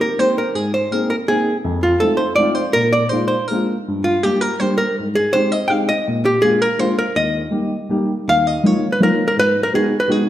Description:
musette; 164 BPM; 3/4; straight; Eb major; A4 = 441 Hz
archtop guitar, miked and amplified; melody; 0.0-10.3 s; F4 to G5; -17 LUFS; equal
dark upright piano; accompaniment; 0.2-10.3 s; Eb2 to Ab4; -19 LUFS; left 1 dB
wet recital hall reverb, RT60 1.4 s; -15 LUFS; side -12 dB against mid
0.0-8.3 A section; 8.3-10.3 B section
0.0 Eb6; 0.6 Abadd9; 1.7 F7; 2.8 Bb7sus4; 3.5 Bb7; 3.9 Gm; 5.0 Abmaj7; 6.1 Bb7; 7.2 Eb; 8.3 Ebmadd9; 9.4 Abm7

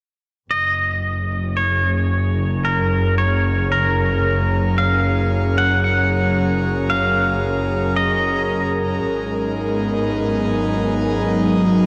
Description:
ambient; 56 BPM; 4/4; straight; F# major; A4 = 438 Hz
pedal steel guitar; melody; 0.5-9.0 s; A#4 to F#5; -23 LUFS; equal; tape echo
airy breathy pad; sustained chords; 0.5-11.9 s; F#3 to G#5; -24 LUFS; equal; chorus
muted symphonic double bass section; bass; 0.5-11.9 s; F#1 to G#1; -23 LUFS; equal
analog drone; drone; 10.4-11.9 s; F#3 to F#4; -22 LUFS; equal; chorus
wet lush hall reverb, RT60 2.6 s; worn, warbling old tape, cassette tape, warbly pitch drift; -19 LUFS; mono
0.5-11.9 A section
fade-in on analog synth pad 0.5-11.9; fade-out on double bass section 0.5-11.9
0.5 F#maj7; 9.0 G#m7

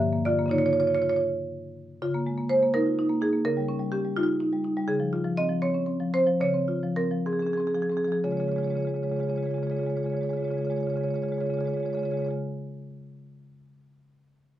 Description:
classical, contemporary piece for solo marimba; 59-84 BPM (dotted quarters); 6/8; straight; Db lydian; A4 = 441 Hz
marimba with medium hard mallets; solo; 0.0-12.4 s; G2 to E5; -24 LUFS; equal
light reverb; worn, warbling old tape, cassette tape, warbly pitch drift; -24 LUFS; side -12 dB against mid
0.0-2.0 A section; 2.0-8.3 B section; 8.3-12.3 C section
slowing down 4.2-8.3
0.5 Db69; 3.5 Eb9/Db; 4.9 Dbmaj7; 8.3 Db

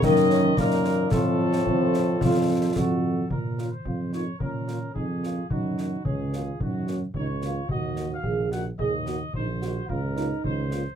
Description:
military-style march for wind band; 110 BPM; 2/4; straight; Bb minor; A4 = 440 Hz
warm trumpet section; melody; 0.0-10.9 s; Gb4 to Gb5; -35 LUFS; left 1 dB
clear euphonium; second line; 0.0-10.7 s; A2 to Ab4; -30 LUFS; right 3 dB
warm French horn section; accompaniment; 0.0-10.8 s; Bb3 to Bb4; -28 LUFS; left 5 dB
warm trombone section; sustained chords; 0.0-3.3 s; Bb3 to Gb4; -29 LUFS; right 1 dB
warm tuba; bass; 0.0-10.9 s; Bb1 to Bb2; -27 LUFS; right 2 dB
concert snare drum and concert bass drum; drums; 0.0-10.8 s; -30 LUFS; left 2 dB
wet booth ambience, RT60 0.2 s; heard from further back in the room; -23 LUFS; side -8 dB against mid
0.0-3.3 A section; 3.3-11.0 B section
0.0 Ebm/Gb; 1.1 F; 3.3 Bbm; 5.5 Gb; 7.7 Ebm; 9.9 Bbm/Db

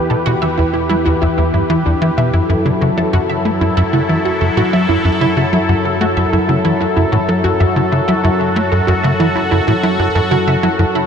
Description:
ambient, sequencer-driven space music; 94 BPM; 4/4; straight; A4 = 440 Hz
sweeping resonant pad; sustained chords; 0.0-11.1 s; E2 to B4; -16 LUFS; left 1 dB; chorus
wide unison pluck; arpeggios; 0.0-11.0 s; D4 to E5; -19 LUFS; right 2 dB; auto-pan, ping-pong delay
tight sequencer bass; riff; 0.1-10.8 s; E2 to A3; -16 LUFS; equal; analog chorus, cassette tape, ping-pong delay
wet huge ambient reverb, RT60 8.3 s; -12 LUFS; side -7 dB against mid
0.0-11.1 A section
0.0 Em; 2.3 F#m7

